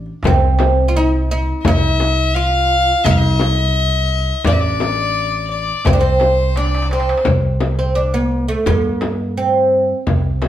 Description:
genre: Arabic maqam ensemble.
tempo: 86 BPM.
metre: 4/4.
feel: straight.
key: C maqam rast.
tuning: A4 = 439 Hz.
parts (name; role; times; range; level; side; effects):
oud; melody; 0.0-10.5 s; A3 to F4; -18 LUFS; right 2 dB; none.
upright bass; bass; 0.0-10.5 s; A1 to G2; -18 LUFS; equal; none.
darbuka; percussion; 0.1-10.5 s; none; -21 LUFS; right 1 dB; none.
frame drum; percussion; 0.3-10.5 s; none; -20 LUFS; left 4 dB; none.
warm violin; second line; 1.6-7.2 s; C5 to F5; -18 LUFS; left 3 dB; none.
room: moderate studio reverb, RT60 0.9 s.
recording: band playing live in one room.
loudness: -14 LUFS.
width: side -12 dB against mid.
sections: 0.0-7.3 A section; 7.3-10.5 B section.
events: drum fill 6.6-7.3.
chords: none.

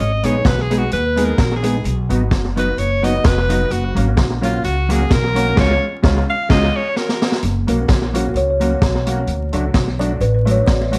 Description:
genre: ska.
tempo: 129 BPM.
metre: 4/4.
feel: swing 54% on 8ths.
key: F# major.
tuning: A4 = 440 Hz.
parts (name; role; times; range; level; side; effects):
bright alto saxophone; melody; 0.0-7.4 s; E#4 to E#5; -23 LUFS; equal; slapback echo.
upright bass; bass; 0.0-11.0 s; E#1 to D#2; -22 LUFS; equal; none.
mellow electric guitar; accompaniment; 0.2-11.0 s; F#3 to G#4; -26 LUFS; equal; spring reverb, slapback echo.
warm upright piano; stabs; 0.2-11.0 s; G#3 to G#4; -28 LUFS; equal; slapback echo.
street-band drum kit; drums; 0.2-11.0 s; crash cymbal, hi-hat, kick drum, snare drum; -20 LUFS; equal; slapback echo.
kalimba; melody; 7.7-11.0 s; F#4 to E5; -24 LUFS; equal; slapback echo.
room: light reverb.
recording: vinyl crackle.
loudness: -17 LUFS.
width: mono.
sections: 0.0-7.4 A section; 7.4-11.0 A section.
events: alto saxophone solo 0.0-7.4; band accent 5.6-7.4; drum fill 7.0-7.4; kalimba solo 7.4-11.0.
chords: 0.0 G#m; 1.9 B; 3.7 F#; 5.6 C#; 7.4 F#; 9.3 D.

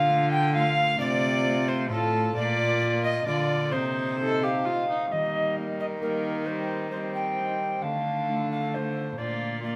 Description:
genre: classical, renaissance-style consort dance.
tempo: 132 BPM.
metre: 3/4.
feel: straight.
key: C dorian.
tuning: A4 = 440 Hz.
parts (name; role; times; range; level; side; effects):
mellow hollow alto recorder; melody; 0.0-9.8 s; A4 to G5; -30 LUFS; equal; none.
warm violin; second line; 0.0-9.8 s; Bb3 to G5; -34 LUFS; equal; none.
concert harp; accompaniment; 0.0-9.8 s; A2 to F4; -36 LUFS; equal; none.
warm viola; accompaniment; 0.0-9.8 s; G3 to A4; -35 LUFS; equal; none.
rich cello; bass; 0.0-9.8 s; A2 to Eb3; -32 LUFS; equal; none.
room: wet stone room reverb, RT60 1.4 s.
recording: none.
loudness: -26 LUFS.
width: mono.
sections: 0.0-5.1 A section; 5.1-9.8 B section.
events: none.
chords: 0.0 Dm; 1.0 F/C; 2.4 Bb; 3.7 Cm; 5.1 Eb; 6.5 Cm/Eb; 7.8 Dm; 9.2 Bb.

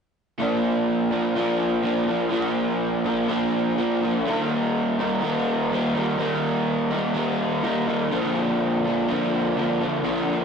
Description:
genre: rock.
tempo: 124 BPM.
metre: 4/4.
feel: straight.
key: Bb major.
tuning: A4 = 439 Hz.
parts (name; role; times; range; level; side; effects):
crunchy overdriven guitar; solo; 0.4-10.4 s; Bb2 to Eb4; -21 LUFS; equal; none.
room: wet stone room reverb, RT60 1.0 s.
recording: rough rehearsal-room recording, warm saturation, nothing above 10.6 kHz.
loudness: -21 LUFS.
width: side -6 dB against mid.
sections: 0.4-10.4 A section.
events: none.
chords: 0.4 Bb; 4.3 Eb; 8.1 Bb.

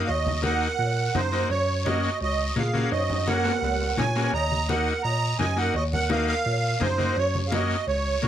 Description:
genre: latin, cumbia.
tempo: 170 BPM.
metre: 4/4.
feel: straight.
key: unclear.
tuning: A4 = 441 Hz.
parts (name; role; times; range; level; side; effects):
musette accordion; melody; 0.0-8.3 s; C5 to Bb5; -27 LUFS; right 4 dB; plate reverb.
breathy clarinet; second line; 0.0-8.3 s; Eb4 to Eb5; -32 LUFS; right 4 dB; none.
combo organ; accompaniment; 0.0-8.3 s; Bb3 to Ab4; -29 LUFS; left 5 dB; none.
mellow tine electric piano; bass; 0.1-8.3 s; Db2 to Bb2; -27 LUFS; equal; none.
congas; percussion; 0.1-8.3 s; none; -32 LUFS; left 2 dB; none.
cowbell and timbales; percussion; 0.1-8.3 s; none; -34 LUFS; equal; none.
guiro; percussion; 0.1-8.3 s; none; -38 LUFS; left 4 dB; none.
room: light reverb.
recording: close, detailed microphones.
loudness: -22 LUFS.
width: side -10 dB against mid.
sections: 0.0-8.3 A section.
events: drum fill 2.9-4.3.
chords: 0.0 Ebm; 1.5 Gbadd9; 4.3 Ebmadd9; 7.2 Gb.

